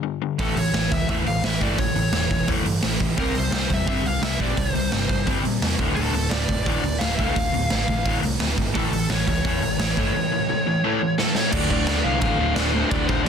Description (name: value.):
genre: punk rock.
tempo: 172 BPM.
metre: 4/4.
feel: straight.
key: D minor.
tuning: A4 = 440 Hz.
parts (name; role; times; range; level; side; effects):
crunchy overdriven guitar; riff; 0.0-13.3 s; D2 to C4; -27 LUFS; left 14 dB; none.
biting lead guitar; melody; 0.4-13.3 s; A4 to F5; -27 LUFS; equal; overdrive.
overdriven semi-hollow guitar; riff; 0.4-13.3 s; D2 to C4; -28 LUFS; right 14 dB; none.
overdriven picked electric bass; bass; 0.4-13.3 s; D1 to Bb2; -27 LUFS; right 1 dB; none.
raw garage drum kit; drums; 0.4-13.3 s; crash cymbal, hi-hat, kick drum, snare drum; -24 LUFS; right 1 dB; none.
room: little or no reverb.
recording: dense, heavily limited modern master.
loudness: -20 LUFS.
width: side -7 dB against mid.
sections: 0.0-11.5 A section; 11.5-13.3 B section.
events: drum fill 11.2-11.5.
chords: 0.4 A; 3.2 C5; 5.8 Dm; 8.7 A; 11.5 Dm.